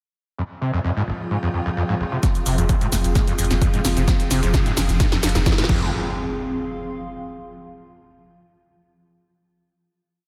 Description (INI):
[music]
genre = driving peak-time techno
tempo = 130 BPM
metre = 4/4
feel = straight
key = F minor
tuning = A4 = 441 Hz
[part]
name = screaming distorted acid line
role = riff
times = 0.4-5.9 s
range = F1 to C3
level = -26 LUFS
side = equal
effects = distortion, lush chorus, sidechain pumping, tape echo
[part]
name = swarming drone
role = drone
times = 1.0-6.0 s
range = F3 to F4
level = -34 LUFS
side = equal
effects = built-in reverb, sidechain pumping
[part]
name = warbly tape-like pad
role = texture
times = 1.2-7.7 s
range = C4 to C6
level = -33 LUFS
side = equal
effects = chorus, built-in reverb, phaser, sidechain pumping
[part]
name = electronic kick drum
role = drums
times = 2.2-5.8 s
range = none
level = -22 LUFS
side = equal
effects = none
[part]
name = punchy analog drum machine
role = drums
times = 2.2-5.8 s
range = crash cymbal, hi-hat, shaker, snare drum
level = -28 LUFS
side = equal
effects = low-pass filter on snare, low-pass filter on hats, low-pass filter on perc, low-pass filter on cymbals
[part]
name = riser and impact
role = sound effects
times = 4.2-7.5 s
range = none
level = -36 LUFS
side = equal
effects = none
[part]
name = saturated sub bass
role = bass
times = 2.5-5.9 s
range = F1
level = -26 LUFS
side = equal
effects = tube saturation, sidechain pumping, low-pass filter
[sound]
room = moderate lush hall reverb, RT60 2.1 s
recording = dreamy mix soaked in reverb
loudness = -21 LUFS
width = mono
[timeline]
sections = 0.4-2.2 intro; 2.2-5.9 build; 5.9-7.8 final chord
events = build-up 2.2-5.9; drum fill 2.2-5.9; filter sweep on acid bass 2.2-5.9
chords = 0.4 Fm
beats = | 0.38 0.85 1.31 1.77 | 2.23 2.69 3.15 3.62 | 4.08 4.54 5.00 5.46 | 5.92 6.38 6.85 7.31